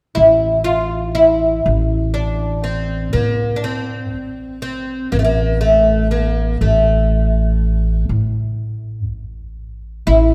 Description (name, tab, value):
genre	Arabic maqam ensemble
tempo	121 BPM (eighths)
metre	10/8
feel	straight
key	A maqam bayati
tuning	A4 = 438 Hz
part	oud	melody	0.1-10.3 s	A3 to F4	-18 LUFS	equal	none
part	upright bass	bass	0.2-10.3 s	A1 to A2	-20 LUFS	equal	none
room	wet concert hall reverb, RT60 1.9 s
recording	recorded in a church or concert hall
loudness	-17 LUFS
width	mono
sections	0.2-10.3 A section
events	none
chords	none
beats	| 0.17 0.66 1.16 1.65 2.14 2.64 3.13 3.63 4.12 4.62 | 5.11 5.61 6.10 6.60 7.09 7.59 8.08 8.58 9.07 9.57 | 10.06